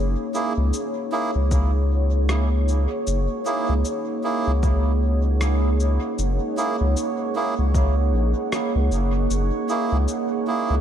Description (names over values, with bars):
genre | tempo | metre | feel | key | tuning
ambient dub | 77 BPM | 4/4 | swing 59% on 16ths | F# mixolydian | A4 = 440 Hz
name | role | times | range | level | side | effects
deep dark ambient pad | sustained chords | 0.0-10.8 s | A#3 to F#5 | -26 LUFS | right 1 dB | chorus, built-in reverb
round analog bass | bass | 0.0-10.8 s | F#1 to C#2 | -20 LUFS | equal | tube saturation
bubbling stepped-filter texture | texture | 0.0-10.8 s | C#5 | -34 LUFS | right 6 dB | chorus, built-in reverb
melodica | stabs | 0.3-10.8 s | A#3 to G#4 | -29 LUFS | right 3 dB | dub echo
electronic cabasa and rim click | drums | 0.3-10.3 s | none | -32 LUFS | left 2 dB | small room ambience, dub echo
electronic kick drum | drums | 1.5-7.9 s | none | -24 LUFS | equal | small room ambience
room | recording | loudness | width
light reverb | none | -20 LUFS | side -9 dB against mid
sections
0.0-10.8 A section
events
none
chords
0.0 F#9